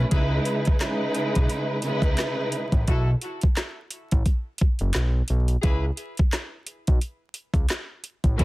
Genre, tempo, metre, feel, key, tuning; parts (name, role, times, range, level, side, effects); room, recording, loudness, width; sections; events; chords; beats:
hip hop, boom-bap hip-hop; 87 BPM; 4/4; swing 57% on 16ths; C# minor; A4 = 440 Hz
warm studio string section; accompaniment; 0.0-2.8, 8.4 s; B2 to B4; -25 LUFS; right 1 dB; high-pass filter, low-pass filter
fat analog bass; bass; 0.0-8.4 s; F#1 to C#2; -23 LUFS; equal
warm horn section; stabs; 0.1-8.4 s; E4 to B4; -34 LUFS; left 1 dB; high-pass filter, low-pass filter, tape echo
garage drum kit; drums; 0.1-8.4 s; handclaps, hi-hat, kick drum, snare drum; -23 LUFS; equal; overdrive
little or no reverb; dense, heavily limited modern master, vinyl crackle; -22 LUFS; side -20 dB against mid
0.1-8.4 A section
0.1 C#m7; 2.9 B7(no3); 5.6 C#7(no3)
| 0.12 0.81 1.50 2.19 | 2.88 3.57 4.25 4.95 | 5.63 6.32 7.01 7.70 | 8.39